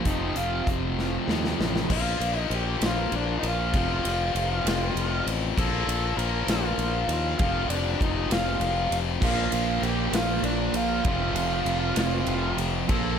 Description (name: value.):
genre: quiet-loud alternative rock.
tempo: 66 BPM (dotted quarters).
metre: 6/8.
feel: straight.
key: unclear.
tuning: A4 = 438 Hz.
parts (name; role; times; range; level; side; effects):
fuzz guitar; riff; 0.0-1.9, 9.2-13.2 s; F2 to Bb3; -30 LUFS; right 14 dB; distortion.
tight distorted guitar; riff; 0.0-13.2 s; F2 to Bb3; -29 LUFS; left 14 dB; distortion.
octave-fuzz lead guitar; melody; 0.1-13.2 s; D4 to Bb4; -30 LUFS; right 1 dB; distortion.
modern bright fingered electric bass; bass; 0.1-13.1 s; F1 to Eb2; -29 LUFS; equal; none.
big rock drum kit; drums; 0.1-13.0 s; crash cymbal, hi-hat, kick drum, ride cymbal, snare drum; -29 LUFS; equal; none.
room: studio reverb.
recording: none.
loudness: -23 LUFS.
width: side -7 dB against mid.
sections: 0.0-1.9 A section; 1.9-13.2 B section.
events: drum fill 1.0-1.9.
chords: 0.1 F; 1.9 Bb5; 3.7 F; 5.6 Bb5; 7.4 F5; 9.2 Bb5; 11.1 F5.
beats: | 0.06 0.98 | 1.90 2.81 | 3.73 4.65 | 5.57 6.48 | 7.40 8.31 | 9.23 10.14 | 11.06 11.98 | 12.90.